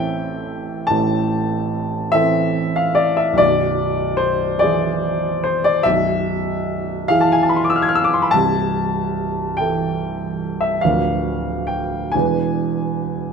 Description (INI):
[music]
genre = classical, romantic nocturne for solo piano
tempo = 48 BPM (dotted quarters)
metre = 12/8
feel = rubato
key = A minor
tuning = A4 = 440 Hz
[part]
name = warm baby grand piano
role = solo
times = 0.0-13.3 s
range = B0 to G#6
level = -16 LUFS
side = equal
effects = none
[sound]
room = moderate stone room reverb, RT60 1.3 s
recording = none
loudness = -16 LUFS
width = side -6 dB against mid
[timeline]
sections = 0.0-13.3 A section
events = none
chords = 0.0 Am; 3.4 E7/B; 8.3 Am/C; 10.8 Bb/D; 12.1 E7